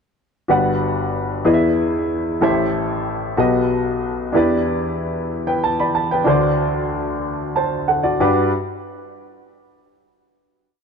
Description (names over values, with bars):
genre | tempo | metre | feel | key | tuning
gospel | 62 BPM (dotted quarters) | 6/8 | straight | G major | A4 = 439 Hz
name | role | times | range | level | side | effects
clear baby grand piano | solo | 0.5-8.5 s | G1 to B5 | -17 LUFS | equal | none
room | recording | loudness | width
moderate plate reverb, RT60 2.7 s | none | -17 LUFS | side -6 dB against mid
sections
0.5-8.2 verse; 8.2-10.1 final chord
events
none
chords
0.5 Gmaj7; 1.5 E7; 2.4 Am7; 3.4 B7b13; 4.3 Em7; 6.3 D7; 8.2 Gmaj7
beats
| 0.50 1.46 | 2.42 3.38 | 4.34 5.30 | 6.27 7.23 | 8.19